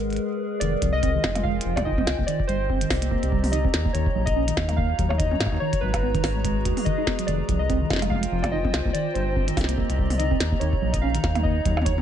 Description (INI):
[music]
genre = IDM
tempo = 144 BPM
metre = 4/4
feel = swing 56% on 16ths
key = unclear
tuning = A4 = 440 Hz
[part]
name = warbly tape-like pad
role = sustained chords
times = 0.0-12.0 s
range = Ab3 to Bb5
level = -31 LUFS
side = left 1 dB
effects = chorus, built-in reverb
[part]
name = round analog bass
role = bass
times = 0.0-12.0 s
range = F1 to Ab2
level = -26 LUFS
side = equal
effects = none
[part]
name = glitchy drum kit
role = drums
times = 0.1-12.0 s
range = hi-hat, percussion blips, snare drum, toms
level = -28 LUFS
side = right 1 dB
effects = none
[part]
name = warbly lo-fi synth keys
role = melody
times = 0.6-11.9 s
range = Cb5 to F5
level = -29 LUFS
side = left 1 dB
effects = chorus, vintage 12-bit sampler grit, ping-pong delay
[part]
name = mellow tine electric piano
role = arpeggios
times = 0.6-12.0 s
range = Eb3 to Gb4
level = -29 LUFS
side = right 2 dB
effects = medium stereo tremolo, digital delay
[part]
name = electronic kick drum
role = drums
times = 0.8-12.0 s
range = none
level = -28 LUFS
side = equal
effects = none
[sound]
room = little or no reverb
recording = nothing above 10.6 kHz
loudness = -21 LUFS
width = side -9 dB against mid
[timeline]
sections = 0.6-12.0 A section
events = none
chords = 0.0 Abm7; 0.6 Fm7; 2.1 Cm7; 3.7 Ebm7; 5.6 Abm7; 7.3 Fm7; 8.7 Cm7; 10.4 Ebm7